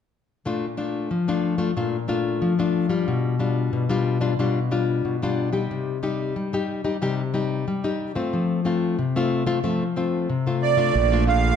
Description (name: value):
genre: samba and choro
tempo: 92 BPM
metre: 4/4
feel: straight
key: Bb major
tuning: A4 = 440 Hz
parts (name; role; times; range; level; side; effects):
- nylon-string guitar; accompaniment; 0.5-11.6 s; Bb2 to G4; -22 LUFS; left 4 dB; none
- accordion; melody; 10.6-11.6 s; D5 to F5; -20 LUFS; right 10 dB; light tremolo tuning
- fuzz fingered electric bass; bass; 11.0-11.5 s; Bb1; -20 LUFS; right 3 dB; overdrive
room: moderate large studio reverb, RT60 1.4 s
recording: dark, warm production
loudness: -21 LUFS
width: side -8 dB against mid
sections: 0.5-11.0 A section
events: none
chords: 0.5 Bbmaj7; 3.1 G7/B; 5.7 Cm; 8.3 F; 11.0 Bbmaj7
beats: | 0.46 1.11 1.77 2.43 | 3.08 3.74 4.39 5.05 | 5.71 6.36 7.02 7.67 | 8.33 8.99 9.64 10.30 | 10.95